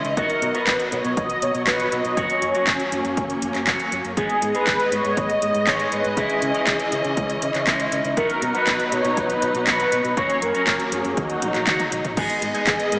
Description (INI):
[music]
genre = italo disco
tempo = 120 BPM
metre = 4/4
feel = straight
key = G# minor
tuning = A4 = 440 Hz
[part]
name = dark symphonic string section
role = sustained chords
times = 0.0-13.0 s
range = E3 to D#5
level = -25 LUFS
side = equal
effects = none
[part]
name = electric guitar with an envelope filter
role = stabs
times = 0.0-12.7 s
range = F#3 to G#4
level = -27 LUFS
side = equal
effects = wide subtle chorus, tape echo
[part]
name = fingered electric bass with an envelope filter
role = bass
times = 0.0-13.0 s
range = F#1 to C#3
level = -32 LUFS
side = equal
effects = none
[part]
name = house drum kit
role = drums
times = 0.0-13.0 s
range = crash cymbal, handclaps, hi-hat, toms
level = -24 LUFS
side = equal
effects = overdrive
[part]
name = mellow synth brass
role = melody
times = 0.2-13.0 s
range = F#4 to D#5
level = -23 LUFS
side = equal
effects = chorus, cassette tape, diffuse ambient delay
[part]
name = electronic kick drum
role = drums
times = 0.2-12.8 s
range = none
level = -29 LUFS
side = equal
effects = overdrive
[sound]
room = wet lush hall reverb, RT60 1.9 s, digital ambience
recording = dreamy mix soaked in reverb, small speaker sound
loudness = -19 LUFS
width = side -24 dB against mid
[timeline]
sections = 0.0-12.2 A section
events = drum fill 11.4-12.2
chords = 0.2 B; 2.2 F#; 4.2 G#m; 6.2 C#madd9; 8.2 B; 10.2 F#; 11.2 D#m; 12.2 G#m